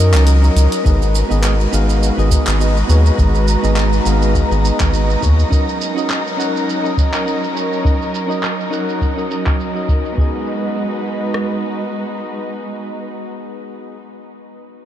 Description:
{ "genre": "sunset chillout", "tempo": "103 BPM", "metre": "4/4", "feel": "swing 55% on 16ths", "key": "G# minor", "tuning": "A4 = 438 Hz", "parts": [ { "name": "soft electric-piano-like synth keys", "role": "accompaniment", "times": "0.0-14.0 s", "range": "B3 to F#5", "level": "-23 LUFS", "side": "equal", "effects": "chorus, tremolo, auto-pan, low-pass filter, tape echo" }, { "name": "muted studio string section", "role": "sustained chords", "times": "0.0-13.3 s", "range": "F#3 to B4", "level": "-22 LUFS", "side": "right 1 dB", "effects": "vintage 12-bit sampler grit" }, { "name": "round analog bass", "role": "bass", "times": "0.0-5.4 s", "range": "G#1 to F#2", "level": "-13 LUFS", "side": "equal", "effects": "none" }, { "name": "deep house drum kit", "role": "drums", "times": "0.1-10.2 s", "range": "handclaps, hi-hat, shaker", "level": "-25 LUFS", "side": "right 1 dB", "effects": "low-pass filter on hats, low-pass filter on perc, low-pass filter on snare, low-pass filter on room" }, { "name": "wind-like tuned noise texture", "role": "texture", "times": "2.0-10.2 s", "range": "A#5", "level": "-29 LUFS", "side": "equal", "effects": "built-in reverb, ensemble chorus" }, { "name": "soft vintage rhythm box", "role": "drums", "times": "0.9-11.5 s", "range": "kick drum, rim click", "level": "-16 LUFS", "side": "equal", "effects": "none" } ], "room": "moderate huge ambient reverb, RT60 7.9 s", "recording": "dreamy mix soaked in reverb", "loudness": "-14 LUFS", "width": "side -11 dB against mid", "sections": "0.8-10.2 A section; 10.2-12.5 B section", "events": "break 0.0-0.8; filter sweep on drum 0.8-10.2", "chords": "0.0 F#6; 0.8 G#m7; 5.5 F#6; 10.2 G#m7", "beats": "0.27 | 0.85 1.43 2.01 2.60 | 3.18 3.76 4.34 4.93 | 5.51 6.09 6.67 7.26 | 7.84 8.42 9.00 9.59 | 10.17 10.75 11.33 11.92" }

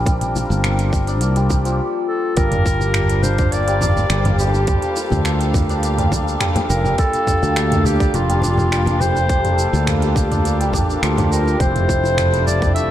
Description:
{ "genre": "organic downtempo", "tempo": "104 BPM", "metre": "4/4", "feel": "straight", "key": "G minor", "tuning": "A4 = 440 Hz", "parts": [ { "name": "pedal harmonium", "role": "accompaniment", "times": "0.0-12.9 s", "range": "G3 to Bb4", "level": "-25 LUFS", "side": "left 2 dB", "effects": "sidechain pumping, tape echo" }, { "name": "santur", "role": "arpeggios", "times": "0.0-12.9 s", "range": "F3 to G4", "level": "-24 LUFS", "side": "equal", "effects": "tape echo" }, { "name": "fretless electric bass", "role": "bass", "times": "0.0-12.9 s", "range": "F1 to D2", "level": "-19 LUFS", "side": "equal", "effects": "wide subtle chorus, sidechain pumping" }, { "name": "electronic kick drum", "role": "drums", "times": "0.1-12.7 s", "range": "none", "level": "-19 LUFS", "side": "equal", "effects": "overdrive" }, { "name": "organic electronic drum kit", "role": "drums", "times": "0.1-12.9 s", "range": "cabasa, finger snaps, hi-hat, toms", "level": "-23 LUFS", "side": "right 1 dB", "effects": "overdrive" }, { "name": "congas and bongos", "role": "percussion", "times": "0.1-12.6 s", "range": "none", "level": "-26 LUFS", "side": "left 2 dB", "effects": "none" }, { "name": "clear clarinet", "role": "melody", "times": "2.1-12.9 s", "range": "F4 to E5", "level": "-23 LUFS", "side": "equal", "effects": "digital delay" }, { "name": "warm studio string section", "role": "sustained chords", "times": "2.4-12.9 s", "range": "Bb3 to F5", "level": "-29 LUFS", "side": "equal", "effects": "sidechain pumping" } ], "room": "light reverb", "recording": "dark, warm production", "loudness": "-15 LUFS", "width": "side -12 dB against mid", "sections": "0.0-2.4 A section; 2.4-12.9 B section", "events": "stop 1.8-2.4", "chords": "0.0 C7sus4; 2.4 Gm7; 11.6 Fmaj7", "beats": "| 0.06 0.64 1.22 1.79 | 2.37 2.95 3.52 4.10 | 4.68 5.25 5.83 6.41 | 6.99 7.56 8.14 8.72 | 9.29 9.87 10.45 11.03 | 11.60 12.18 12.76" }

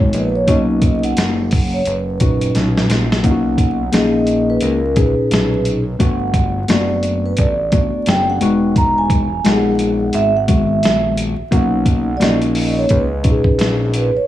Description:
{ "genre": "hip hop, jazz-hop", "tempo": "87 BPM", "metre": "4/4", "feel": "swing 61% on 16ths", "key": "B major", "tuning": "A4 = 440 Hz", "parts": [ { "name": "vibraphone with medium mallets", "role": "melody", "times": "0.0-14.3 s", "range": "A#4 to A#5", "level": "-20 LUFS", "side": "right 3 dB", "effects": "analog delay" }, { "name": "tine electric piano", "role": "accompaniment", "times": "0.0-14.1 s", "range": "A#2 to G#4", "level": "-18 LUFS", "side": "left 3 dB", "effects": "none" }, { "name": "fat analog bass", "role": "bass", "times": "0.0-14.2 s", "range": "E1 to C#2", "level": "-21 LUFS", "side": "equal", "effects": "none" }, { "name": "dusty soul sampler-style drum kit", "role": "drums", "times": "0.1-14.1 s", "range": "hi-hat, kick drum, snare drum", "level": "-17 LUFS", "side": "equal", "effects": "none" } ], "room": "digital ambience", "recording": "vinyl crackle, small room ambience", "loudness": "-13 LUFS", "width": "side -13 dB against mid", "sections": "0.0-3.2 A section; 3.2-14.3 B section", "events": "drum fill 2.5-3.2", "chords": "0.5 Bmaj9; 6.0 Gmaj9; 8.4 Emaj9; 11.5 Bmaj9", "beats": "| 0.48 1.17 1.86 2.55 | 3.24 3.93 4.62 5.31 | 6.00 6.69 7.38 8.07 | 8.76 9.45 10.14 10.83 | 11.52 12.21 12.89 13.58" }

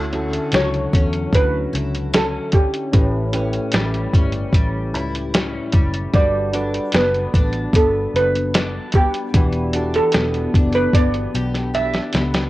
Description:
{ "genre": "indie pop, bedroom pop", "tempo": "75 BPM", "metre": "4/4", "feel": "straight", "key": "D major", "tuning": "A4 = 440 Hz", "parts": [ { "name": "steel pan", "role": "melody", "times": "0.0-12.3 s", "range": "G4 to E5", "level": "-21 LUFS", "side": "right 2 dB", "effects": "lush chorus, cassette tape, analog delay" }, { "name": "picked steel-string acoustic guitar", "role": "accompaniment", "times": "0.0-12.5 s", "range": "A2 to G4", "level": "-25 LUFS", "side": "left 2 dB", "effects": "analog chorus, vibrato effect, cassette tape" }, { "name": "soft electric-piano-like synth keys", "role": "accompaniment", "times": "0.0-12.5 s", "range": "C#4 to B4", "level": "-28 LUFS", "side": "right 1 dB", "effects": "chorus, cassette tape" }, { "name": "vintage muted fingered electric bass", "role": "bass", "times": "0.0-12.5 s", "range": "E1 to E2", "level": "-24 LUFS", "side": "equal", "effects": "none" }, { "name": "lo-fi sampler-style drum kit", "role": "drums", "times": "0.1-12.5 s", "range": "hi-hat, kick drum, snare drum", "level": "-18 LUFS", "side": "equal", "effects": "cassette tape" } ], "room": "light reverb", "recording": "home recording on cassette", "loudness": "-16 LUFS", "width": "side -17 dB against mid", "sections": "0.0-12.5 A section", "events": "drum fill 11.7-12.5", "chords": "0.0 Dmaj9; 2.9 A7; 6.1 Gmaj7; 9.3 Em7", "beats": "0.53 1.33 2.14 | 2.94 3.74 4.54 5.34 | 6.14 6.94 7.74 8.54 | 9.34 10.14 10.94 11.74" }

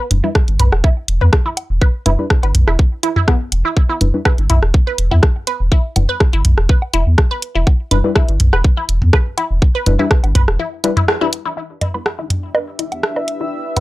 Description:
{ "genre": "minimal techno", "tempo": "123 BPM", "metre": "4/4", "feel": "swing 53% on 16ths", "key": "E minor", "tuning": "A4 = 440 Hz", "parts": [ { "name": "filtered dub chord stab", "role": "stabs", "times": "0.1-13.8 s", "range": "G3 to B4", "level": "-21 LUFS", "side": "left 3 dB", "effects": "chorus, analog delay" }, { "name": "saturated sub bass", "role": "bass", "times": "0.1-13.8 s", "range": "E1 to E2", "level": "-14 LUFS", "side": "equal", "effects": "sidechain pumping, high-pass filter" }, { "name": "garage drum kit", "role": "drums", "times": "0.1-13.8 s", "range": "hi-hat, rim click", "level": "-17 LUFS", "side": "right 1 dB", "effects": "none" }, { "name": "electronic toms, woodblock and bongos", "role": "percussion", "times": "0.1-13.8 s", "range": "none", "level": "-19 LUFS", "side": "equal", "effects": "none" }, { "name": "resonant blip pluck", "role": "riff", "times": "0.2-13.8 s", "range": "B3 to B4", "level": "-21 LUFS", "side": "equal", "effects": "phaser, sidechain pumping, analog delay" }, { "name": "electronic kick drum", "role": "drums", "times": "0.4-10.5 s", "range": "none", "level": "-13 LUFS", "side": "equal", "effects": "none" }, { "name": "granular cloud pad", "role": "texture", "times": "12.3-13.8 s", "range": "D4 to E5", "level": "-24 LUFS", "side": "left 1 dB", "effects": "built-in reverb, sidechain pumping" } ], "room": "little or no reverb", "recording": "dry, gritty hardware recording", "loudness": "-13 LUFS", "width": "side -18 dB against mid", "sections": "0.0-11.6 A section; 11.6-13.8 B section", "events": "filter sweep on synth stab 0.0-11.6; break 10.6-11.6; band accent 11.1; filter sweep on synth arpeggio sound 11.6-13.8", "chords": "0.0 Em7", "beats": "0.35 0.84 1.33 | 1.81 2.30 2.79 3.28 | 3.77 4.25 4.74 5.23 | 5.72 6.21 6.69 7.18 | 7.67 8.16 8.64 9.13 | 9.62 10.11 10.60 11.08 | 11.57 12.06 12.55 13.03 | 13.52" }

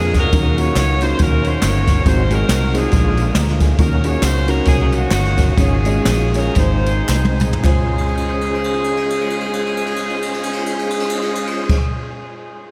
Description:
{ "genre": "uptempo gospel", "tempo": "104-139 BPM", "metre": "4/4", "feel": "swing 58% on 8ths", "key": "Db major", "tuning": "A4 = 438 Hz", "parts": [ { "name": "bright saxophone section", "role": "melody", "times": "0.0-11.8 s", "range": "Bb3 to Db5", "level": "-24 LUFS", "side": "equal", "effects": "tape echo" }, { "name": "dark upright piano", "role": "accompaniment", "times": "0.0-11.8 s", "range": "Db2 to Bb5", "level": "-27 LUFS", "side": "equal", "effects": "none" }, { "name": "percussive tonewheel organ", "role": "sustained chords", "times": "0.0-11.8 s", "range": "D3 to C5", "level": "-28 LUFS", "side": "equal", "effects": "slow rotary speaker, overdrive, chorus vibrato" }, { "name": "vintage muted fingered electric bass", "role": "bass", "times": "0.0-11.8 s", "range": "G1 to F2", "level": "-21 LUFS", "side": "equal", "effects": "none" }, { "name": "jazz brush drum kit", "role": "drums", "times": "0.1-11.9 s", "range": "crash cymbal, kick drum, ride cymbal, snare drum, toms", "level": "-22 LUFS", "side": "equal", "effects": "none" }, { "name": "tambourine and handclaps", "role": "percussion", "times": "0.1-11.8 s", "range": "none", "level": "-34 LUFS", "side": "equal", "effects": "none" } ], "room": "moderate huge ambient reverb, RT60 8.4 s", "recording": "dreamy mix soaked in reverb", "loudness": "-17 LUFS", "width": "mono", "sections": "0.0-7.6 A section; 7.6-12.3 B section", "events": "upright piano fill 3.1-3.8; slowing down 3.8-7.6; drum fill 7.1-7.6, 7.9-11.7", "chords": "0.3 Ebm7; 2.1 Ab7; 2.9 Bb7; 3.8 Ebm7; 5.6 Db/Ab; 6.6 Ab; 7.6 Dbmaj7", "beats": "| 0.33 0.76 1.19 1.63 | 2.06 2.49 2.92 3.35 | 3.79 4.22 4.66 5.11 | 5.58 6.06 6.56 7.09 | 7.65 8.22 8.80 9.38 | 9.95 10.53 11.11 11.68" }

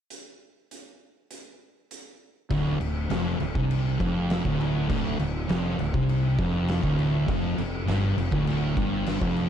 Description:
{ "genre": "stoner and doom metal", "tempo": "100 BPM", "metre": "4/4", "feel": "straight", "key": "D minor", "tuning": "A4 = 441 Hz", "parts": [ { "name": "oversized low-tuned drum kit", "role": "drums", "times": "0.1-9.5 s", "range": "crash cymbal, hi-hat, kick drum, snare drum", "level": "-31 LUFS", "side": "equal", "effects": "none" }, { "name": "thick fuzz guitar", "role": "riff", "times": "2.5-9.5 s", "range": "D2 to C3", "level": "-28 LUFS", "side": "left 6 dB", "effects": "distortion" }, { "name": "thick fuzz guitar", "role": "riff", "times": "2.5-9.5 s", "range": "D2 to C3", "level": "-28 LUFS", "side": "right 8 dB", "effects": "distortion" }, { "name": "fuzz fingered electric bass", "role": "bass", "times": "2.5-9.5 s", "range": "D1 to C2", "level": "-31 LUFS", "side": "equal", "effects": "overdrive" } ], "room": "light reverb", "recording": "dark, warm production", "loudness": "-23 LUFS", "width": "side -9 dB against mid", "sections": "0.1-2.5 A section; 2.5-9.5 B section", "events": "none", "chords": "0.1 N.C.; 2.5 Dm; 7.3 Dmadd11", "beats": "| 0.11 0.71 1.31 1.91 | 2.51 3.10 3.70 4.30 | 4.90 5.49 6.09 6.69 | 7.28 7.88 8.47 9.07" }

